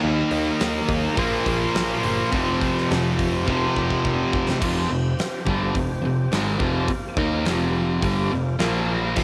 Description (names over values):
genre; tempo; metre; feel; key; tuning
hard rock; 105 BPM; 4/4; straight; unclear; A4 = 435 Hz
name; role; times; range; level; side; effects
overdriven tonewheel organ; sustained chords; 0.0-9.2 s; F3 to G5; -36 LUFS; equal; none
cranked stack guitar; riff; 0.0-9.2 s; F2 to Eb4; -29 LUFS; equal; overdrive, cassette tape
heavy high-gain guitar; riff; 0.0-4.6, 9.2 s; F2 to Eb4; -30 LUFS; equal; distortion, cassette tape
sludgy distorted guitar; riff; 0.0-9.2 s; F2 to Eb4; -27 LUFS; equal; overdrive, cassette tape
picked electric bass; bass; 0.0-9.2 s; F1 to Eb2; -31 LUFS; equal; none
huge arena drum kit; drums; 0.3-9.2 s; crash cymbal, hi-hat, kick drum, snare drum; -30 LUFS; equal; cassette tape
room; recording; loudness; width
light reverb, small room ambience; home recording on cassette; -22 LUFS; mono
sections
0.0-4.6 A section; 4.6-9.2 B section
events
drum fill 3.5-4.6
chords
0.0 Eb5; 1.2 Bb5; 2.3 F5; 4.6 Fm; 8.6 Bb5